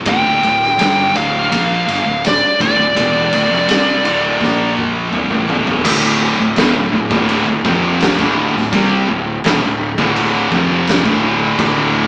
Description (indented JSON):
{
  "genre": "stoner and doom metal",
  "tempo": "83 BPM",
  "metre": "4/4",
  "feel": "straight",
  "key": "D minor",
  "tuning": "A4 = 440 Hz",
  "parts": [
    { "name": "thick fuzz guitar", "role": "riff", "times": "0.0-12.1 s", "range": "D2 to C4", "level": "-19 LUFS", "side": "equal", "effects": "distortion" },
    { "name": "thick fuzz guitar", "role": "riff", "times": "0.0-12.1 s", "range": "D2 to C4", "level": "-19 LUFS", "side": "equal", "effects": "distortion" },
    { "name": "fuzz fingered electric bass", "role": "bass", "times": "0.0-12.1 s", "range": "D1 to C2", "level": "-22 LUFS", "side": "equal", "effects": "overdrive" },
    { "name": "fuzz lead guitar", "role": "melody", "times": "0.1-4.7 s", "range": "D5 to G5", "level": "-14 LUFS", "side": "equal", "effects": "wah, distortion" },
    { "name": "oversized low-tuned drum kit", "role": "drums", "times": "0.1-11.8 s", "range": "crash cymbal, kick drum, ride cymbal, snare drum, toms", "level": "-18 LUFS", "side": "equal", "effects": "none" },
    { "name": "distorted electric guitar", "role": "riff", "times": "5.8-12.1 s", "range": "D2 to C4", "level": "-20 LUFS", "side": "equal", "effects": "overdrive" }
  ],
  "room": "light reverb",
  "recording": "band playing live in one room, small speaker sound",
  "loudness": "-12 LUFS",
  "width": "side -32 dB against mid",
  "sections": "0.0-5.8 A section; 5.8-12.1 B section",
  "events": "drum fill 4.4-5.8",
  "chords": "0.0 Dm; 4.4 Bb5; 5.1 D5; 5.8 Dm"
}